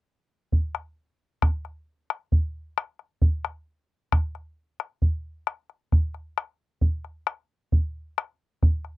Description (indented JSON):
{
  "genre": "andean folk",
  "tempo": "67 BPM",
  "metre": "3/4",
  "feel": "straight",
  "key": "none",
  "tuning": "none",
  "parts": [
    { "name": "bombo", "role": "percussion", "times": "0.5-9.0 s", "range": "none", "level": "-21 LUFS", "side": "equal", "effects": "none" }
  ],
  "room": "moderate booth ambience, RT60 0.2 s",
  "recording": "dry, close 1970s-style studio recording",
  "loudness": "-25 LUFS",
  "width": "side -17 dB against mid",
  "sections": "0.5-5.9 A section; 5.9-9.0 B section",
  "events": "none",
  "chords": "none",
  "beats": "| 0.52 1.43 2.33 | 3.23 4.12 5.02 | 5.92 6.82 7.72 | 8.61"
}